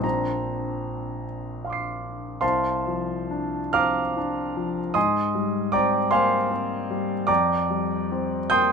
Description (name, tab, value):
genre	classical, impressionist solo piano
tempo	43-52 BPM (dotted quarters)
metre	6/8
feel	rubato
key	C minor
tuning	A4 = 440 Hz
part	clear grand piano	solo	0.0-8.7 s	Bb1 to C7	-22 LUFS	equal	none
room	light reverb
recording	minimal, uncompressed stereo recording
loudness	-22 LUFS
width	side -5 dB against mid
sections	0.0-2.4 A section; 2.4-8.7 B section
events	none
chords	0.0 Bbadd9; 2.4 C9sus4; 5.0 Abmaj9; 7.3 Fsus2